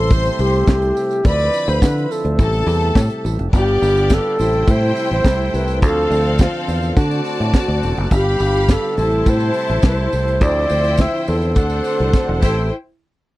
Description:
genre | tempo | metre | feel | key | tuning
disco | 105 BPM | 4/4 | straight | A minor | A4 = 440 Hz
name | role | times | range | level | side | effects
mellow alto flute | melody | 0.0-12.7 s | F4 to E5 | -20 LUFS | equal | none
bright studio string section | second line | 0.0-12.7 s | B3 to C6 | -24 LUFS | left 2 dB | none
tonewheel organ | sustained chords | 0.0-12.7 s | C3 to G4 | -26 LUFS | right 1 dB | slow rotary speaker
fingered electric bass | bass | 0.0-12.7 s | E1 to D3 | -19 LUFS | equal | none
tight funk drum kit | drums | 0.1-12.6 s | crash cymbal, hi-hat, kick drum, snare drum | -14 LUFS | equal | none
tambourine | percussion | 0.1-12.7 s | none | -40 LUFS | right 11 dB | none
room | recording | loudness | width
little or no reverb | dry, close 1970s-style studio recording | -14 LUFS | side -17 dB against mid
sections
0.0-3.5 A section; 3.5-12.7 B section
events
drum fill 12.1-12.7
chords
0.0 Am7; 1.2 Dm9; 2.4 Am7; 3.5 G7; 4.4 Am7; 5.8 Dm9; 7.0 D7; 8.1 G7; 9.0 Am7; 10.4 Dm9; 11.6 D7; 12.4 Am7; 12.7 N.C.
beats
0.10 0.68 | 1.25 1.82 2.39 2.96 | 3.53 4.10 4.67 5.25 | 5.82 6.39 6.97 7.54 | 8.12 8.69 9.27 9.84 | 10.42 10.99 11.57 12.14

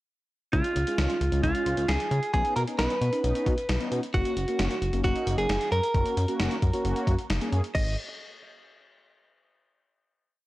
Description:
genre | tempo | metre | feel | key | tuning
synth-pop | 133 BPM | 4/4 | straight | G# dorian | A4 = 440 Hz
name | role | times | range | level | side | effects
direct-recorded clean electric guitar | melody | 0.5-8.0 s | E#4 to D#5 | -28 LUFS | right 1 dB | phaser
mellow synth brass | accompaniment | 0.5-7.6 s | G#3 to G#4 | -33 LUFS | left 1 dB | chorus
chorused synth bass | bass | 0.5-8.0 s | F#1 to C#3 | -27 LUFS | equal | none
gated 80s digital drum machine | drums | 0.5-7.9 s | crash cymbal, hi-hat, kick drum, snare drum | -31 LUFS | equal | gated reverb, gated reverb snare
room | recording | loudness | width
light reverb, digital ambience | dry, gritty hardware recording, cassette tape | -24 LUFS | side -17 dB against mid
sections
0.5-7.8 verse; 7.8-9.6 final chord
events
none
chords
0.5 C#; 2.3 Badd9; 4.1 F#; 7.8 G#5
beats
| 0.53 0.98 1.43 1.89 | 2.34 2.79 3.24 3.69 | 4.14 4.59 5.04 5.49 | 5.95 6.40 6.85 7.30 | 7.75

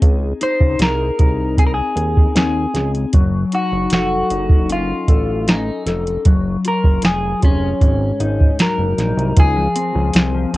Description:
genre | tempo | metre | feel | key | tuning
indie pop, bedroom pop | 77 BPM | 4/4 | straight | Db major | A4 = 440 Hz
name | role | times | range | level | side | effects
mellow electric guitar | accompaniment | 0.0-10.6 s | Ab2 to A4 | -22 LUFS | left 4 dB | analog chorus, warbly pitch drift, cassette tape
fat analog bass | bass | 0.0-10.6 s | F1 to Eb2 | -21 LUFS | equal | tube saturation
soft vintage rhythm box | drums | 0.0-10.6 s | hi-hat, kick drum, snare drum | -13 LUFS | equal | cassette tape
clean electric guitar | melody | 0.4-10.5 s | Db4 to C5 | -21 LUFS | equal | wide subtle chorus, cassette tape
room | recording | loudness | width
light reverb | home recording on cassette | -14 LUFS | side -18 dB against mid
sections
0.0-9.4 A section; 9.4-10.6 B section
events
none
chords
0.0 Dbmaj7sus2; 3.1 Gbm6; 6.3 Gbsus2; 7.8 Ab7sus4; 9.4 Dbmaj9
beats
| 0.02 0.80 1.58 2.36 | 3.14 3.92 4.70 5.48 | 6.25 7.03 7.81 8.59 | 9.37 10.15

